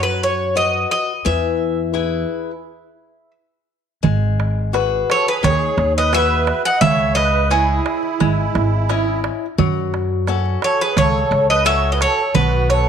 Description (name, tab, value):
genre	greek folk, Greek bouzouki band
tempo	86 BPM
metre	4/4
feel	straight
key	unclear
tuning	A4 = 440 Hz
part	Greek bouzouki	melody	0.0-12.9 s	G#4 to F#5	-18 LUFS	equal	none
part	picked swing-style acoustic guitar	accompaniment	0.0-12.9 s	C#3 to D#5	-23 LUFS	left 9 dB	none
part	upright bass	bass	0.0-12.9 s	G#1 to F#2	-20 LUFS	equal	none
part	darbuka	percussion	4.0-12.9 s	none	-22 LUFS	right 8 dB	none
part	musette accordion	second line	5.1-12.9 s	E4 to D#5	-23 LUFS	right 9 dB	none
room	moderate echo chamber reverb, RT60 1.3 s, studio reverb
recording	1960s-style stereo with parts hard left and right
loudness	-15 LUFS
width	side -8 dB against mid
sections	0.0-4.0 A section; 4.0-12.9 B section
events	stop 2.7-4.0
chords	0.0 B; 1.3 E; 4.0 G#m7; 6.8 C#madd9; 9.6 F#m; 12.3 B5